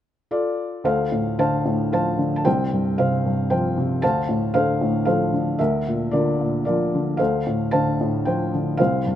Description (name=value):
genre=classical, lyrical solo piano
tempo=113 BPM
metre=3/4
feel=rubato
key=D minor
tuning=A4 = 440 Hz
part: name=felt-muted upright piano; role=solo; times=0.3-9.2 s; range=C2 to A5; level=-19 LUFS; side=equal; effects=none
room=light reverb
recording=close, detailed microphones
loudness=-19 LUFS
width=side -11 dB against mid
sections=0.8-9.2 A section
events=none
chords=0.0 Dm; 0.8 Dm7; 2.5 Csus4; 4.0 Dm7; 5.6 Bb/D; 7.2 Dm7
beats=0.30 | 0.83 1.38 1.92 | 2.46 2.99 3.51 | 4.03 4.54 5.06 | 5.59 6.12 6.66 | 7.20 7.73 8.27 | 8.79